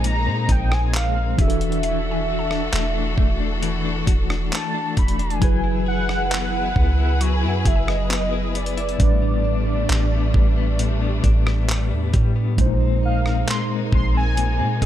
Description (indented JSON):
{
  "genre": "contemporary R&B",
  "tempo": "67 BPM",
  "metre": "4/4",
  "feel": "straight",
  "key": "unclear",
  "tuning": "A4 = 440 Hz",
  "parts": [
    { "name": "mellow tine electric piano", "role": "accompaniment", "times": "0.0-14.9 s", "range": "A2 to G5", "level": "-27 LUFS", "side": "right 1 dB", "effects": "medium stereo tremolo" },
    { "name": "dark studio string section", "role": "sustained chords", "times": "0.0-14.9 s", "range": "E3 to B4", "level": "-30 LUFS", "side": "left 1 dB", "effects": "sidechain pumping" },
    { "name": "direct-recorded clean electric guitar", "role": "arpeggios", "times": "0.0-14.9 s", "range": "A2 to G#4", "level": "-28 LUFS", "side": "left 10 dB", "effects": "tremolo, digital delay" },
    { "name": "soft 808-style bass", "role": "bass", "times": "0.0-14.9 s", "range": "E1 to A#2", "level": "-22 LUFS", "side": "equal", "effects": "none" },
    { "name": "dusty soul sampler-style drum kit", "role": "drums", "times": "0.0-14.9 s", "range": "handclaps, hi-hat, kick drum, rim click", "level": "-20 LUFS", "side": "equal", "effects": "none" },
    { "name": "mallet-like synth pluck", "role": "texture", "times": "0.0-14.9 s", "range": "G#4 to C#6", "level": "-38 LUFS", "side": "right 2 dB", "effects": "none" },
    { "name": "warm velvety synth lead", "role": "melody", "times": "0.1-14.8 s", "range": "D5 to B#5", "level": "-27 LUFS", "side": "right 1 dB", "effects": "chorus" }
  ],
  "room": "little or no reverb",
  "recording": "none",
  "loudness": "-18 LUFS",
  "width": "side -11 dB against mid",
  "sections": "0.0-14.9 A section",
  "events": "none",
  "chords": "0.0 A#9sus4; 1.4 E9sus4; 5.4 F#9sus4; 9.0 A9sus4; 12.6 A#9sus4"
}